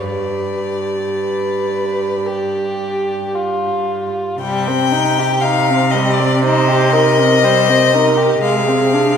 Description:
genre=classical, slow romantic movement for string quartet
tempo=54-61 BPM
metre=4/4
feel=rubato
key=C minor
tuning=A4 = 440 Hz
part: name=rich violin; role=melody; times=0.0-9.2 s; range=D5 to G5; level=-18 LUFS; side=left 7 dB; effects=none
part: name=dark violin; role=second line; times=0.0-9.2 s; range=G3 to B4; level=-19 LUFS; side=left 2 dB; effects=none
part: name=dark viola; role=accompaniment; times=0.0-9.2 s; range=G4 to C5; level=-18 LUFS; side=right 2 dB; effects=none
part: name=rich cello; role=bass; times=0.0-9.2 s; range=G2 to C3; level=-20 LUFS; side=right 4 dB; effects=none
room=wet scoring stage reverb, RT60 1.6 s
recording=recorded in a church or concert hall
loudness=-13 LUFS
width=side -7 dB against mid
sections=0.0-4.4 A section; 4.4-9.2 A section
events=none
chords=0.0 G; 4.4 Cm; 8.4 Dm7b5/C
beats=| 0.02 1.12 2.23 3.32 | 4.39 5.41 6.41 7.42 | 8.41

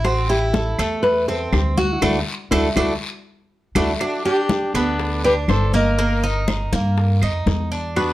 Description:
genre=latin, Cuban son and guajira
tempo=121 BPM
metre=4/4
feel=straight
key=unclear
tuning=A4 = 441 Hz
part: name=nylon-string guitar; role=melody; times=0.0-8.1 s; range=E4 to Eb5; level=-22 LUFS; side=equal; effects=plate reverb
part: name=Cuban tres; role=arpeggios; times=0.0-8.1 s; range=A3 to G4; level=-23 LUFS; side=right 2 dB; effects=none
part: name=upright bass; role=bass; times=0.0-8.1 s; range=G1 to G2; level=-22 LUFS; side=equal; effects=none
part: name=bongos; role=percussion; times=0.0-8.1 s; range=none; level=-30 LUFS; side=left 5 dB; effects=none
part: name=claves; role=percussion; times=0.0-8.1 s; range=none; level=-31 LUFS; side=right 6 dB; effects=none
part: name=congas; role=percussion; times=0.0-8.1 s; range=none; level=-26 LUFS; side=left 3 dB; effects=none
part: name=guiro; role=percussion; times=0.1-8.1 s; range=none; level=-34 LUFS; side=left 4 dB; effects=none
part: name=growling trumpet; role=second line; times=4.0-8.1 s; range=D4 to Bb4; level=-26 LUFS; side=left 2 dB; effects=analog delay
room=light reverb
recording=none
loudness=-17 LUFS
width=side -15 dB against mid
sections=0.0-4.0 A section; 4.0-8.1 A section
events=band accent 2.0-4.0; drum fill 3.8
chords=0.0 Am; 2.0 Dadd9; 4.0 Gadd9; 6.0 Eb/G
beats=| 0.04 0.54 1.04 1.53 | 2.03 2.52 3.02 3.51 | 4.01 4.50 5.00 5.49 | 5.99 6.48 6.98 7.47 | 7.96

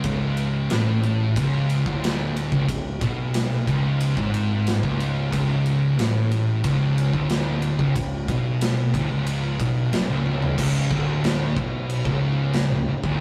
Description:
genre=stoner and doom metal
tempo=91 BPM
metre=4/4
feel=straight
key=unclear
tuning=A4 = 439 Hz
part: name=thick fuzz guitar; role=riff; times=0.0-13.2 s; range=C#2 to B2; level=-28 LUFS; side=equal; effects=distortion
part: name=thick fuzz guitar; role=riff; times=0.0-13.2 s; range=C#2 to B2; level=-26 LUFS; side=equal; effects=distortion
part: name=fuzz picked electric bass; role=bass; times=0.0-13.2 s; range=C#1 to B1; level=-34 LUFS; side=equal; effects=overdrive
part: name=big rock drum kit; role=drums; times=0.0-13.2 s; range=crash cymbal, kick drum, ride cymbal, snare drum, toms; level=-30 LUFS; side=equal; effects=none
room=wet stone room reverb, RT60 0.9 s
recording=rough rehearsal-room recording, tube saturation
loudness=-23 LUFS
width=mono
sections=0.0-10.6 A section; 10.6-13.2 B section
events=drum fill 10.3-10.6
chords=0.0 C#5; 10.6 N.C.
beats=| 0.05 0.71 1.37 2.03 | 2.69 3.35 4.01 4.67 | 5.33 5.98 6.64 7.30 | 7.96 8.62 9.28 9.93 | 10.59 11.24 11.89 12.55 | 13.20

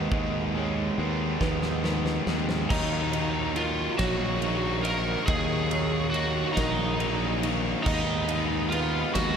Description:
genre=post-rock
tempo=46 BPM (dotted quarters)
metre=6/8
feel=straight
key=Eb minor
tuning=A4 = 440 Hz
part: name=rich symphonic string section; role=sustained chords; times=0.0-9.4 s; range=Gb3 to Db6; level=-39 LUFS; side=equal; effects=none
part: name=felt-muted upright piano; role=arpeggios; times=0.0-9.4 s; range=Bb4 to Eb5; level=-39 LUFS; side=right 2 dB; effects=tape echo
part: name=twelve-string electric guitar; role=arpeggios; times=0.0-9.4 s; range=Eb2 to Eb4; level=-37 LUFS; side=left 4 dB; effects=none
part: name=distorted electric guitar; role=riff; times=0.0-9.4 s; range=Eb2 to Eb4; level=-32 LUFS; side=left 11 dB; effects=distortion
part: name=overdriven electric guitar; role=riff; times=0.0-9.4 s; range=Eb2 to Eb4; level=-32 LUFS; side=right 11 dB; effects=none
part: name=fuzz fingered electric bass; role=bass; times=0.0-9.4 s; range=Bb1 to Eb2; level=-30 LUFS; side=equal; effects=overdrive
part: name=huge arena drum kit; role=drums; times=0.1-9.4 s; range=crash cymbal, kick drum, ride cymbal, snare drum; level=-32 LUFS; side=equal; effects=none
part: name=overdriven slide guitar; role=melody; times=2.7-9.4 s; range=Eb4 to Bb4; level=-30 LUFS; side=equal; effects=tape echo
room=moderate plate reverb, RT60 1.6 s, small room ambience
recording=dreamy mix soaked in reverb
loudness=-24 LUFS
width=side -7 dB against mid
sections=0.0-2.7 A section; 2.7-9.4 B section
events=build-up 0.0-2.7; drum fill 1.4-2.7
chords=0.0 Abm7/Eb; 2.7 Ebm9; 7.9 Abm/Eb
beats=| 0.12 1.41 | 2.70 3.99 | 5.28 6.57 | 7.86 9.16

